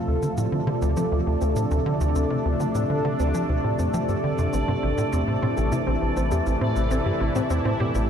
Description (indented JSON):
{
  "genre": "ambient, sequencer-driven space music",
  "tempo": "101 BPM",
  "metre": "4/4",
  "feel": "straight",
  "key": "unclear",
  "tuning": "A4 = 440 Hz",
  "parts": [
    { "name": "sweeping resonant pad", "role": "sustained chords", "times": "0.0-8.1 s", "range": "C3 to A4", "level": "-25 LUFS", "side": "equal", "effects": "chorus" },
    { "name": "wide unison pluck", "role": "arpeggios", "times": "0.0-8.1 s", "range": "G3 to C5", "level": "-33 LUFS", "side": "left 1 dB", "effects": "auto-pan, tape echo" },
    { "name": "bubbling stepped-filter texture", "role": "texture", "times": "0.0-8.1 s", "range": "D5", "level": "-33 LUFS", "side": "right 2 dB", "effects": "chorus, built-in reverb" },
    { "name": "tight sequencer bass", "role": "riff", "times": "0.1-8.1 s", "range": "A1 to F3", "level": "-24 LUFS", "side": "equal", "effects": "analog chorus, vintage 12-bit sampler grit, tape echo" },
    { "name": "electronic cabasa and toms", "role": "percussion", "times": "0.2-8.1 s", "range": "none", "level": "-37 LUFS", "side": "left 1 dB", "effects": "tape echo" }
  ],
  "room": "wet huge ambient reverb, RT60 6.9 s",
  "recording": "in a vast, echoing space, cassette tape",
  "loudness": "-21 LUFS",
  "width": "side -8 dB against mid",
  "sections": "0.0-8.1 A section",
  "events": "fade-in on synth arpeggio sound 0.0-8.1",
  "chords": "0.0 Dm7; 4.5 Am",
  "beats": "0.38 0.97 1.56 | 2.16 2.75 3.35 3.94 | 4.53 5.13 5.72 6.32 | 6.91 7.50 8.10"
}